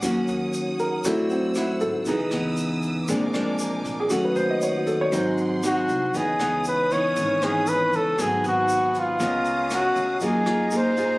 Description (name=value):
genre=bossa nova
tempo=118 BPM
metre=4/4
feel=straight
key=C# minor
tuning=A4 = 439 Hz
part: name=nylon-string guitar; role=accompaniment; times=0.0-11.2 s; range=G#2 to A#4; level=-28 LUFS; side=equal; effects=none
part: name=warm grand piano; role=accompaniment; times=0.0-11.2 s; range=E3 to E#5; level=-26 LUFS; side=equal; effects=none
part: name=warm symphonic string section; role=sustained chords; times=0.0-11.2 s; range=G#4 to E6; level=-35 LUFS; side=equal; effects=none
part: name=upright bass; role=bass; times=0.0-11.2 s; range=G#1 to G#2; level=-34 LUFS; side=equal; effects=none
part: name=jazz brush drum kit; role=drums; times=0.0-11.1 s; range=hi-hat, kick drum, rim click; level=-39 LUFS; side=equal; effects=none
part: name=tube shaker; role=percussion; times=0.0-11.2 s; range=none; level=-38 LUFS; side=equal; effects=none
part: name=warm flugelhorn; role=melody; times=5.7-11.2 s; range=E#4 to C#5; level=-22 LUFS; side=equal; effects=none
part: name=clear trombone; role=second line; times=6.1-11.2 s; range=B3 to D#4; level=-33 LUFS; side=equal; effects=none
room=moderate large studio reverb, RT60 0.9 s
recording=recorded on a phone in the room, studio reverb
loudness=-21 LUFS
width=side -22 dB against mid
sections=0.0-6.1 A section; 6.1-11.2 B section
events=grand piano solo 0.0-6.1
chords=0.0 D#m7; 1.0 D9; 2.1 C#m9; 3.1 A#7; 4.1 D#m7b5; 5.1 G#7; 6.1 C#m9; 8.2 G#m7; 9.2 C#13; 10.2 F#maj9